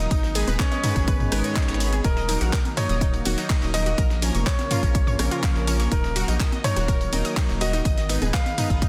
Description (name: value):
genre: progressive house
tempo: 124 BPM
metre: 4/4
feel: straight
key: Eb minor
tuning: A4 = 441 Hz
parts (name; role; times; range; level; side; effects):
- clear concert grand piano; melody; 0.0-8.9 s; Db4 to F5; -32 LUFS; equal; tape echo
- lush unison pad; sustained chords; 0.0-8.9 s; Db3 to Cb4; -36 LUFS; equal; chorus, sidechain pumping
- unison pluck; arpeggios; 0.0-8.8 s; Db4 to Eb6; -34 LUFS; equal; sidechain pumping, tape echo
- round analog bass; bass; 0.0-8.9 s; Eb1 to Bb1; -28 LUFS; equal; sidechain pumping
- house drum kit; drums; 0.0-8.9 s; handclaps, hi-hat, ride cymbal, tambourine; -34 LUFS; equal; none
- dusty soul sampler-style drum kit; drums; 0.1-8.9 s; hi-hat, shaker, snare drum; -41 LUFS; equal; none
- electronic kick drum; drums; 0.1-8.9 s; none; -25 LUFS; equal; none
- chorused polysynth; stabs; 0.4-8.8 s; Ab2 to Db5; -34 LUFS; equal; sidechain pumping, tape echo
- punchy analog drum machine; percussion; 0.5-8.7 s; congas, rim click, toms; -31 LUFS; equal; sidechain pumping on perc, sidechain pumping on toms, soft clipping on snare, sidechain pumping on snare
room: light reverb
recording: dense, heavily limited modern master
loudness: -23 LUFS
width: mono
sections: 0.0-8.9 A section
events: none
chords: 0.1 Abm; 2.0 Ebm; 4.0 Bbm; 5.9 Ebm; 7.9 Abm